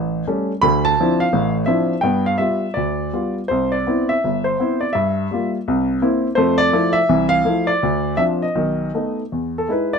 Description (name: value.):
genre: solo jazz.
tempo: 166 BPM.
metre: 4/4.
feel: swing 65% on 8ths, rubato.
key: C major.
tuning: A4 = 440 Hz.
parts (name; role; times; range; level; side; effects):
warm baby grand piano; solo; 0.0-10.0 s; G1 to B5; -16 LUFS; equal; none.
room: light reverb.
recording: close, detailed microphones.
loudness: -16 LUFS.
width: side -6 dB against mid.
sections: 0.0-9.3 A section.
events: none.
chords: 0.0 A7; 0.6 Dm9; 2.0 G7; 3.5 Cmaj7; 5.0 Gm7; 5.7 C7; 6.4 Fmaj7; 7.8 Dm7; 8.6 B7; 9.3 Emaj7.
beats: 0.26 | 0.62 0.97 1.32 1.68 | 2.04 2.40 2.77 3.14 | 3.51 3.87 4.23 4.60 | 4.95 5.31 5.67 6.02 | 6.38 6.73 7.09 7.45 | 7.81 8.18 8.55 8.94 | 9.32 9.70.